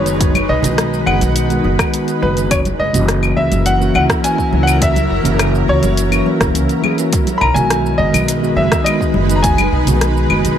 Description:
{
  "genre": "sunset chillout",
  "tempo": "104 BPM",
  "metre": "4/4",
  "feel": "straight",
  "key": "B major",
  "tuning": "A4 = 439 Hz",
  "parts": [
    { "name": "bright grand piano", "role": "melody", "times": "0.0-10.6 s", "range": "B4 to B5", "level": "-20 LUFS", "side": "equal", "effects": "tape echo" },
    { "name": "mellow tine electric piano", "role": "accompaniment", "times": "0.0-10.6 s", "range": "D#3 to A#4", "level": "-19 LUFS", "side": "equal", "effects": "auto-pan, tape echo" },
    { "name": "shimmering ambient pad", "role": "sustained chords", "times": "0.0-10.6 s", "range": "F#3 to B4", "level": "-21 LUFS", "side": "equal", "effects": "chorus, built-in reverb" },
    { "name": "upright bass", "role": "bass", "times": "0.0-10.6 s", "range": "E1 to C#2", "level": "-18 LUFS", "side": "equal", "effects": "none" },
    { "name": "deep house drum kit", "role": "drums", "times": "0.1-10.6 s", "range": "claves, hi-hat, rim click, shaker", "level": "-20 LUFS", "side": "left 2 dB", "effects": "overdrive" },
    { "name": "electronic kick drum", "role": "drums", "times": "0.2-9.6 s", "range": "none", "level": "-18 LUFS", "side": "equal", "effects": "overdrive" },
    { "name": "congas", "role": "percussion", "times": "0.3-10.6 s", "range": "none", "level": "-24 LUFS", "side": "right 4 dB", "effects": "none" }
  ],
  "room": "light reverb",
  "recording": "none",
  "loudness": "-12 LUFS",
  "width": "side -9 dB against mid",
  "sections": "0.0-10.6 A section",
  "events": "none",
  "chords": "0.0 B6; 2.5 F#7; 7.1 B6"
}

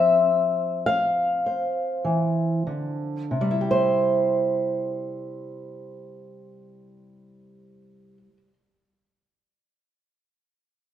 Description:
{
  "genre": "folk, solo fingerstyle acoustic guitar",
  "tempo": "46-56 BPM",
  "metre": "4/4",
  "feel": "straight",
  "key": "C major",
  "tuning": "A4 = 440 Hz",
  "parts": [
    { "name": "fingerpicked old ladder-braced acoustic guitar", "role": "solo", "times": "0.0-8.5 s", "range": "C3 to F5", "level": "-22 LUFS", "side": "equal", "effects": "none" }
  ],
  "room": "moderate large studio reverb, RT60 1.4 s",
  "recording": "band playing live in one room",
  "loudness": "-21 LUFS",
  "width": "side -10 dB against mid",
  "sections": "0.0-3.3 A section; 3.3-8.5 B section",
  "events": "slowing down 0.0-3.3",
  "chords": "0.0 F5; 3.3 C"
}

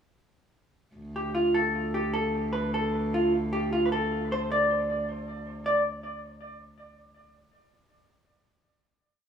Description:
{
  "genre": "medieval dance",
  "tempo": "103 BPM (dotted quarters)",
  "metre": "6/8",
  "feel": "straight",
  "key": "D dorian",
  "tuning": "A4 = 440 Hz",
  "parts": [
    { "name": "rich viola da gamba", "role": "drone", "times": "1.0-5.7 s", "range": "D2", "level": "-32 LUFS", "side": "equal", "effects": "none" },
    { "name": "vintage hollow-body jazz guitar", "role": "melody", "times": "1.2-5.8 s", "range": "F4 to D5", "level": "-26 LUFS", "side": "equal", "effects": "tape echo" }
  ],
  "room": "wet spring reverb, RT60 1.3 s",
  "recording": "echo-heavy mix, small room ambience",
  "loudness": "-25 LUFS",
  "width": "side -7 dB against mid",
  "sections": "0.9-5.6 A section; 5.6-6.8 final note",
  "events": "speeding up 0.9-6.8",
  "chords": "none"
}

